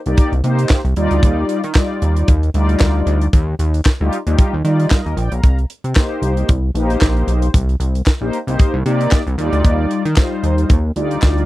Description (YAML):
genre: early-eighties boogie funk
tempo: 114 BPM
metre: 4/4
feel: swing 56% on 16ths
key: unclear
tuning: A4 = 440 Hz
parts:
  - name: mellow synth brass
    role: accompaniment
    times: 0.1-11.5 s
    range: G3 to Bb5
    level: -20 LUFS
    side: left 1 dB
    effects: chorus
  - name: chorused synth bass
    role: bass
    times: 0.1-11.4 s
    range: Bb1 to Eb3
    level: -16 LUFS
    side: equal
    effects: none
  - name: tight funk drum kit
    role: drums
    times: 0.1-11.5 s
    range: handclaps, hi-hat, kick drum, snare drum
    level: -14 LUFS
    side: equal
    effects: none
room: little or no reverb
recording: dry, close 1970s-style studio recording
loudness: -14 LUFS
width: side -17 dB against mid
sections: 0.0-11.5 A section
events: none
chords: 0.0 Cm7; 1.0 Ebmaj9; 5.4 Cm7; 9.4 Ebmaj9